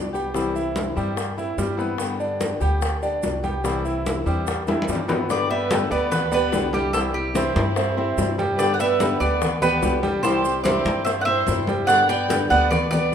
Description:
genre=latin, Cuban son and guajira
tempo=146 BPM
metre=4/4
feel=straight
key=G major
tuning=A4 = 440 Hz
part: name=flamenco guitar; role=accompaniment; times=0.0-13.1 s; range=C3 to G4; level=-28 LUFS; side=left 4 dB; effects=none
part: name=bright concert grand piano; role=arpeggios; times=0.0-13.1 s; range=G3 to G5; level=-26 LUFS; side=right 2 dB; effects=none
part: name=upright bass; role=bass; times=0.0-13.1 s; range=C2 to G2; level=-29 LUFS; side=equal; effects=none
part: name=bongos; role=percussion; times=0.1-13.1 s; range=none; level=-30 LUFS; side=left 5 dB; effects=none
part: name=maracas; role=percussion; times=0.2-13.1 s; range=none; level=-39 LUFS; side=right 8 dB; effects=none
part: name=congas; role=percussion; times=0.4-13.1 s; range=none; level=-29 LUFS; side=left 1 dB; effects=none
part: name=Cuban tres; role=melody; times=5.3-13.1 s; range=G4 to G5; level=-23 LUFS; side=right 2 dB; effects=none
part: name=warm chamber violin section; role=second line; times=5.3-13.1 s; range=E4 to D5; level=-29 LUFS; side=right 3 dB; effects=none
room=wet large studio reverb, RT60 1.4 s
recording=minimal, uncompressed stereo recording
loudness=-19 LUFS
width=side -8 dB against mid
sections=0.0-5.3 A section; 5.3-13.1 B section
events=drum fill 4.7-5.3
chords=0.3 C; 2.0 G; 3.6 C; 5.3 G; 6.9 C; 8.6 G; 10.2 C; 11.9 G

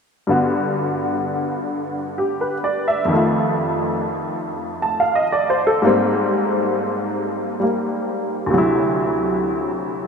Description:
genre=solo jazz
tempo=88 BPM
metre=4/4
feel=swing 68% on 8ths, rubato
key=unclear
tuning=A4 = 440 Hz
part: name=honky-tonk upright piano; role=solo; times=0.3-10.1 s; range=D2 to A5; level=-18 LUFS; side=equal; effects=none
room=wet huge ambient reverb, RT60 8.2 s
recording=in a vast, echoing space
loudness=-18 LUFS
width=side -6 dB against mid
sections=0.3-10.1 A section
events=none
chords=0.3 Gmaj7; 3.1 F7; 5.8 Abmaj9; 8.5 D9

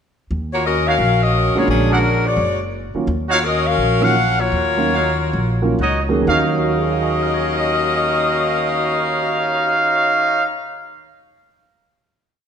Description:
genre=jazz, big band swing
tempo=121-174 BPM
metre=4/4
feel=swing 63% on 8ths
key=Eb minor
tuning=A4 = 440 Hz
part: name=upright bass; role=bass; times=0.3-10.4 s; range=F#1 to Eb2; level=-22 LUFS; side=equal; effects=none
part: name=warm saxophone section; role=melody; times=0.5-10.4 s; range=F#3 to Gb5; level=-18 LUFS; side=left 3 dB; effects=none
part: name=mellow trumpet section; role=stabs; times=0.9-10.4 s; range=D4 to F#5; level=-20 LUFS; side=right 2 dB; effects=none
part: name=warm grand piano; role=accompaniment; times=1.6-11.5 s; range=Eb2 to Ab6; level=-22 LUFS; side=right 3 dB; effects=none
room=moderate scoring stage reverb, RT60 1.7 s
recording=none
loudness=-15 LUFS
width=side -7 dB against mid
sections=0.3-6.3 A section; 6.3-10.2 final chord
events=slowing down 3.1-6.3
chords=0.3 Ebm9; 1.7 Bb7alt; 3.1 Ebm9

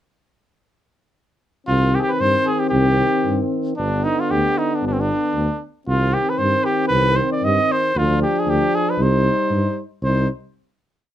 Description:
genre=balkan folk, Balkan brass band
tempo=115 BPM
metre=2/4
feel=swing 56% on 16ths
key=C harmonic minor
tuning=A4 = 444 Hz
part: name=warm cornet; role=melody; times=1.7-10.3 s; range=C4 to Eb5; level=-20 LUFS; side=equal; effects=none
part: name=dark euphonium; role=accompaniment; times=1.7-10.3 s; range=D3 to G3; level=-26 LUFS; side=right 6 dB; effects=none
part: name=warm French horn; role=accompaniment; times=1.7-10.3 s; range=B3 to Eb4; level=-25 LUFS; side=left 5 dB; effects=none
part: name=mellow tuba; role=bass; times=1.7-10.3 s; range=G1 to G2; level=-20 LUFS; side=equal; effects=none
room=light reverb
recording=none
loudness=-17 LUFS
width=side -11 dB against mid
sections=1.7-10.0 A section; 10.0-11.1 final chord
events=none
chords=1.7 Cm; 3.8 G; 5.9 Cm; 8.0 Dmadd11; 9.0 Cm

